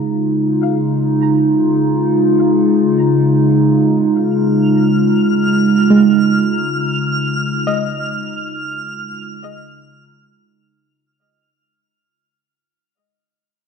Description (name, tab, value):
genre	ambient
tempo	free time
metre	none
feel	none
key	Db major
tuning	A4 = 440 Hz
part	warbly tape-like pad	sustained chords	0.0-11.2 s	Db3 to F4	-13 LUFS	equal	chorus, built-in reverb
part	soft round pluck	arpeggios	0.0-10.7 s	Ab3 to F5	-18 LUFS	right 4 dB	chorus, ping-pong delay
part	twinkling granular texture	texture	4.6-11.2 s	F6	-23 LUFS	equal	built-in reverb
room	wet concert hall reverb, RT60 2.1 s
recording	dark, warm production, nothing above 10.8 kHz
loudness	-12 LUFS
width	side -6 dB against mid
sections	0.0-11.2 A section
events	filter sweep on ambient pad 0.0-11.2; fade-out 6.5-11.2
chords	0.0 Db